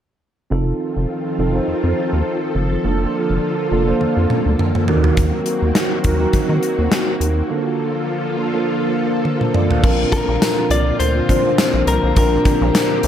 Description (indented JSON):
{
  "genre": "1980s-style pop",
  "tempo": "103 BPM",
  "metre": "4/4",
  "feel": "swing 55% on 16ths",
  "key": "Bb major",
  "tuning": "A4 = 442 Hz",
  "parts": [
    { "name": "mellow tine electric piano", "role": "accompaniment", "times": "0.5-13.1 s", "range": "Bb2 to F5", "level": "-20 LUFS", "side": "right 2 dB", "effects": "lush chorus" },
    { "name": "string machine, violas", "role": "sustained chords", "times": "0.5-13.1 s", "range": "D3 to A4", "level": "-22 LUFS", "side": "left 1 dB", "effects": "ensemble chorus" },
    { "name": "rubbery square bass", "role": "bass", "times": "0.5-13.1 s", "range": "F1 to Eb3", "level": "-19 LUFS", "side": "equal", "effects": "none" },
    { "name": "gated 80s drum kit", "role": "drums", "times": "4.0-13.1 s", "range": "crash cymbal, hi-hat, kick drum, snare drum, tambourine, toms", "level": "-18 LUFS", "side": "equal", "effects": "none" },
    { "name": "direct-recorded clean electric guitar", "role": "melody", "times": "10.1-13.1 s", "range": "Bb4 to D5", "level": "-20 LUFS", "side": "left 5 dB", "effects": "spring reverb, diffuse ambient delay" },
    { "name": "tambourine", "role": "percussion", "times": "10.4-12.9 s", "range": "none", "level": "-34 LUFS", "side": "left 8 dB", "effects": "none" }
  ],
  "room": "moderate plate reverb, RT60 1.4 s, small room reverb",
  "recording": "dreamy mix soaked in reverb",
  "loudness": "-15 LUFS",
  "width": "side -10 dB against mid",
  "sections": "0.5-9.8 A section; 9.8-13.1 B section",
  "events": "drum fill 4.0-5.2, 9.3-9.8",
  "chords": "0.5 F7; 2.8 Bbmaj7/F; 4.9 Ebm6; 7.5 Bbmaj7/D; 9.8 Bbadd9",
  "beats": "| 0.52 1.10 1.68 2.26 | 2.85 3.43 4.01 4.59 | 5.17 5.76 6.34 6.92 | 7.50 8.09 8.67 9.25 | 9.84 10.42 11.00 11.58 | 12.16 12.75"
}